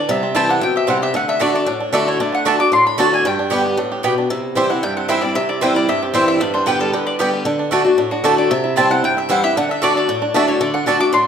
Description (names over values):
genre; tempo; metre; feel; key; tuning
bluegrass; 228 BPM; 4/4; straight; unclear; A4 = 440 Hz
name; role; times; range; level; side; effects
bluegrass banjo; melody; 0.0-11.3 s; G3 to G4; -24 LUFS; right 4 dB; none
mandolin; melody; 0.0-11.3 s; F#4 to D6; -19 LUFS; left 1 dB; none
picked swing-style acoustic guitar; accompaniment; 0.0-11.3 s; G2 to G4; -18 LUFS; left 2 dB; none
mandolin; stabs; 0.3-11.0 s; A3 to A5; -22 LUFS; right 4 dB; none
room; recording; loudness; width
wet large studio reverb, RT60 1.2 s; none; -14 LUFS; side -8 dB against mid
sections
0.0-4.3 A section; 4.3-11.3 A section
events
none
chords
0.1 C; 1.1 D; 3.3 G; 4.3 C; 6.4 G; 7.5 D; 8.5 C; 9.6 D